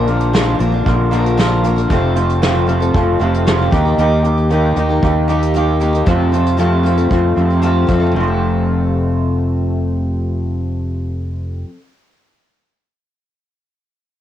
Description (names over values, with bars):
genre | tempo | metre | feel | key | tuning
folk rock and heartland rock | 115 BPM | 4/4 | straight | F mixolydian | A4 = 440 Hz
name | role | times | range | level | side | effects
picked steel-string acoustic guitar | accompaniment | 0.0-11.8 s | F2 to Bb4 | -22 LUFS | left 4 dB | cassette tape
electric guitar through a small old amp | riff | 0.0-11.7 s | F2 to G4 | -17 LUFS | right 1 dB | lush chorus, cassette tape
fingered electric bass | bass | 0.0-11.6 s | F1 to F2 | -17 LUFS | equal | none
soft brush drum kit | drums | 0.1-8.0 s | hi-hat, kick drum, snare drum | -20 LUFS | equal | cassette tape
room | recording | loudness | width
light reverb | home recording on cassette | -13 LUFS | side -11 dB against mid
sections
0.0-8.1 A section; 8.1-12.3 B section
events
none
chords
0.0 Bb; 1.9 F; 3.7 Eb; 6.1 F